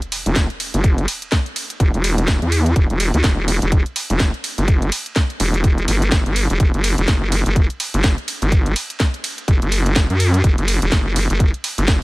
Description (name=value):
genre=bass house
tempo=125 BPM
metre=4/4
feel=swing 59% on 16ths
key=E minor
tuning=A4 = 437 Hz
part: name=garage drum kit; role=drums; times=0.0-12.0 s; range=hi-hat, ride cymbal, snare drum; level=-22 LUFS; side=equal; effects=none
part: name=impact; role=sound effects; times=0.1-0.8 s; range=none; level=-42 LUFS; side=equal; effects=none
part: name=vowel-sweep wobble bass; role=bass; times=0.3-12.0 s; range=E1 to F#2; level=-17 LUFS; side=equal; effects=chorus, tube saturation, sidechain pumping
part: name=electronic kick drum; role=drums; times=0.4-12.0 s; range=none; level=-16 LUFS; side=equal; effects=none
room=little or no reverb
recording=none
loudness=-15 LUFS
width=side -22 dB against mid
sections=0.0-12.0 A section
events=impact 0.0-0.8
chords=none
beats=0.36 | 0.84 1.32 1.80 2.28 | 2.76 3.24 3.72 4.20 | 4.68 5.16 5.64 6.12 | 6.60 7.08 7.56 8.04 | 8.52 9.00 9.48 9.96 | 10.44 10.92 11.40 11.88